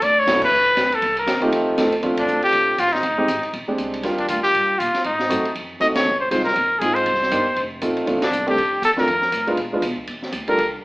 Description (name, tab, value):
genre	jazz, small-group swing and bop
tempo	238 BPM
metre	4/4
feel	swing 59% on 8ths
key	Bb major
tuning	A4 = 442 Hz
part	bright trumpet	melody	0.0-10.7 s	D4 to Eb5	-18 LUFS	equal	none
part	upright bass	bass	0.0-10.8 s	F1 to Cb3	-34 LUFS	equal	none
part	open jazz drum kit	drums	0.0-10.7 s	crash cymbal, hi-hat, kick drum, ride cymbal, snare drum	-28 LUFS	equal	none
part	warm grand piano	accompaniment	0.3-10.6 s	G3 to A4	-22 LUFS	right 1 dB	none
room	wet large studio reverb, RT60 0.8 s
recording	band playing live in one room, AM radio sound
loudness	-17 LUFS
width	side -22 dB against mid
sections	0.0-2.0 A section; 2.0-10.1 B section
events	band accent 0.4, 2.2, 5.9, 8.2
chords	0.0 Dmaj7; 1.0 Cm7; 1.5 F7; 2.0 Bbmaj7; 3.0 Fm7; 3.5 Bb13; 4.0 Ebmaj7; 5.0 Ab7b9; 6.1 Dbmaj9; 7.1 Cm9; 7.6 F7; 8.1 Bbmaj7; 9.6 Bb7b9; 10.1 Ebmaj7#11